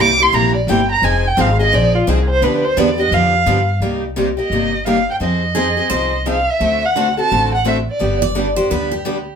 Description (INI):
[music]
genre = acoustic string swing (jazz manouche)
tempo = 172 BPM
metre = 4/4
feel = swing 62% on 8ths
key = C minor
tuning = A4 = 438 Hz
[part]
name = dark violin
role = melody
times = 0.0-8.2 s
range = F4 to D6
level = -16 LUFS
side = right 2 dB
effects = none
[part]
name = picked steel-string acoustic guitar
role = accompaniment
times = 0.0-9.2 s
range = C3 to A4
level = -20 LUFS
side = left 3 dB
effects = none
[part]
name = picked swing-style acoustic guitar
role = accompaniment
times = 0.0-9.2 s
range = C3 to A4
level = -24 LUFS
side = right 5 dB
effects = none
[part]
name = upright bass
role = bass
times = 0.0-9.3 s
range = F1 to G2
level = -20 LUFS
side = equal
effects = none
[part]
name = picked steel-string acoustic guitar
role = second line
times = 5.5-9.4 s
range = G4 to D5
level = -21 LUFS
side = right 1 dB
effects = none
[sound]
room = wet studio ambience, RT60 0.5 s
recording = band playing live in one room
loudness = -13 LUFS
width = side -7 dB against mid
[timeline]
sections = 0.0-3.8 A section; 3.8-9.4 B section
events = violin solo 0.0-3.8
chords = 0.0 C7; 1.0 Fm7; 2.4 G7; 3.8 Cm7; 5.2 Fm7; 6.6 D7; 8.0 G